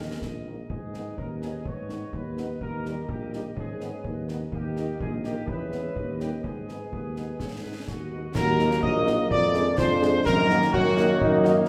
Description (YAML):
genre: military-style march for wind band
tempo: 125 BPM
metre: 2/4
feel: straight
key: G# minor, Eb minor from 8.4 s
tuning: A4 = 441 Hz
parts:
  - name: dark trumpet section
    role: melody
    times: 0.0-11.4 s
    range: F#4 to Eb5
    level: -34 LUFS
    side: equal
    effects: none
  - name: clear woodwind section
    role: second line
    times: 0.0-11.4 s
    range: Gb4 to E5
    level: -37 LUFS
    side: equal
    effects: none
  - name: warm euphonium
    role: second line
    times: 0.0-11.7 s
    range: A#3 to Gb4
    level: -35 LUFS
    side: equal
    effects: none
  - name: mellow French horn section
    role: accompaniment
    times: 0.0-11.5 s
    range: D#3 to Ab4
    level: -36 LUFS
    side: equal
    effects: none
  - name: warm tuba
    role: bass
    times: 0.0-11.6 s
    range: Bb1 to G#2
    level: -31 LUFS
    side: equal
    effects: none
  - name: concert snare drum, concert bass drum and clash cymbals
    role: drums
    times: 0.2-11.6 s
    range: none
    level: -36 LUFS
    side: equal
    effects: none
  - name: mellow wooden piccolo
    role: second line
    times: 7.9-11.4 s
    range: F#5 to Eb6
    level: -34 LUFS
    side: equal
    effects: none
  - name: bright trombone section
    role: sustained chords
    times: 8.4-11.7 s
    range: Eb3 to Bb3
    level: -34 LUFS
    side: equal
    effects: none
room: wet recital hall reverb, RT60 1.4 s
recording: recorded in a church or concert hall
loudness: -26 LUFS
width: mono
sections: 0.0-8.4 A section; 8.4-11.7 B section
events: none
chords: 0.0 D#; 0.7 G#m; 2.6 D#; 3.6 G#m; 4.5 D#; 5.5 E; 6.0 D#; 6.4 G#m; 8.4 Ebm; 9.3 Ddim/F; 10.3 Ebm/Gb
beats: 0.22 | 0.70 1.18 | 1.66 2.13 | 2.61 3.09 | 3.57 4.05 | 4.53 5.01 | 5.49 5.96 | 6.44 6.92 | 7.40 7.88 | 8.35 8.83 | 9.31 9.78 | 10.26 10.74 | 11.21